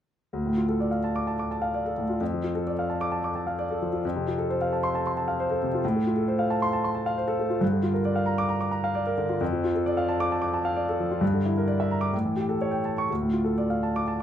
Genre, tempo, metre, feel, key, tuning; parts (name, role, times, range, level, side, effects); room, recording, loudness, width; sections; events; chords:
classical, virtuoso piano study; 132 BPM; 4/4; rubato; D minor; A4 = 440 Hz
warm concert grand piano; solo; 0.3-14.2 s; D2 to D6; -24 LUFS; equal
light reverb; minimal, uncompressed stereo recording; -24 LUFS; side -10 dB against mid
0.3-14.2 A section
0.3 Dm; 2.2 Dm/F; 4.0 F; 5.8 F/A; 7.6 Gm7; 9.4 Dm/F; 11.2 Em7b5/G; 12.1 A7; 13.1 Dm